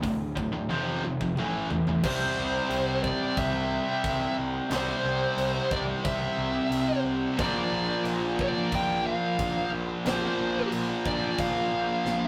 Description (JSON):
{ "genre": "heavy metal", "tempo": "90 BPM", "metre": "4/4", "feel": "straight", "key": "unclear", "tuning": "A4 = 440 Hz", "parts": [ { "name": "tight distorted guitar", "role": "riff", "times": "0.0-12.3 s", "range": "D2 to C4", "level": "-30 LUFS", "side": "equal", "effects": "distortion" }, { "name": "fuzz picked electric bass", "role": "bass", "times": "0.0-12.3 s", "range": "D1 to C2", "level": "-38 LUFS", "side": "equal", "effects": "overdrive" }, { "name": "tight metal drum kit", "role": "drums", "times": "0.0-12.2 s", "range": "crash cymbal, hi-hat, kick drum, snare drum, toms", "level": "-38 LUFS", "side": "equal", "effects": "none" }, { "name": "high-gain lead guitar", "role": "melody", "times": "2.1-12.3 s", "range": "C5 to G5", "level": "-32 LUFS", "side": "equal", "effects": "distortion" } ], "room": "moderate studio reverb, RT60 0.5 s", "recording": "rough rehearsal-room recording, tube saturation", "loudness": "-28 LUFS", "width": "mono", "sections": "0.0-2.0 A section; 2.0-12.3 B section", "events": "drum fill 0.7-2.0, 12.0; half time 2.0-12.3", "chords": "0.0 D5; 0.7 F5; 1.4 A5; 2.0 C; 7.4 Bb", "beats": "0.03 0.70 1.37 | 2.04 2.71 3.38 4.05 | 4.72 5.38 6.05 6.72 | 7.39 8.05 8.72 9.39 | 10.05 10.72 11.38 12.05" }